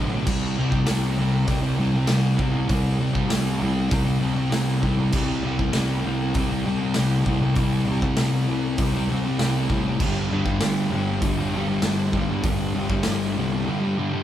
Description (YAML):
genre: garage rock duo or trio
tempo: 98 BPM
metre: 4/4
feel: straight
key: unclear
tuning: A4 = 440 Hz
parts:
  - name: fuzz guitar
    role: riff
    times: 0.0-14.2 s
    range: D2 to C4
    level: -22 LUFS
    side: equal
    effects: distortion
  - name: fuzz picked electric bass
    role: bass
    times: 0.0-13.7 s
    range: G1 to C2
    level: -27 LUFS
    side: equal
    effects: overdrive
  - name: raw garage drum kit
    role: drums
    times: 0.3-13.2 s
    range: crash cymbal, hi-hat, kick drum, snare drum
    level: -27 LUFS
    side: equal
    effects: none
room: light reverb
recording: band playing live in one room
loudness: -20 LUFS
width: side -11 dB against mid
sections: 0.0-14.2 A section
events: none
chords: 0.3 C5; 10.0 G5